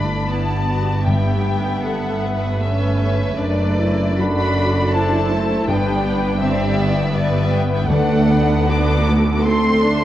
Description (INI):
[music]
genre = classical, slow romantic movement for symphony orchestra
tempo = 79 BPM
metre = 3/4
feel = uneven beats, rubato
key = G major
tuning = A4 = 444 Hz
[part]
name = warm symphonic violin section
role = melody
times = 0.0-10.0 s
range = D5 to D6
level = -25 LUFS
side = left 2 dB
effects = none
[part]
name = rich chamber violin section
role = second line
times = 0.0-10.0 s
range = D4 to E5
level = -24 LUFS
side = left 1 dB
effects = none
[part]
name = rich studio viola section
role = accompaniment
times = 0.0-10.0 s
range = G3 to F#4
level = -22 LUFS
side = right 1 dB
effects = none
[part]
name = concert harp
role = arpeggios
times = 0.0-10.0 s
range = F#2 to C5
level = -25 LUFS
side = left 3 dB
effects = none
[part]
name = rich chamber cello section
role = bass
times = 0.0-10.0 s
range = D2 to G2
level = -22 LUFS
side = right 1 dB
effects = none
[part]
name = rich chamber double bass section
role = bass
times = 0.0-10.0 s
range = F#1 to D2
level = -23 LUFS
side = right 2 dB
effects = none
[part]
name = timpani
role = percussion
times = 1.1-9.0 s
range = G2 to D3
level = -25 LUFS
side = equal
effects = none
[sound]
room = wet concert hall reverb, RT60 1.9 s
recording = worn, warbling old tape, cassette tape, warbly pitch drift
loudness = -16 LUFS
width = side -12 dB against mid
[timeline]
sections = 0.0-10.0 A section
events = none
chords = 0.0 G; 1.1 A7/G; 3.4 D/F#; 5.7 G; 7.9 D7b9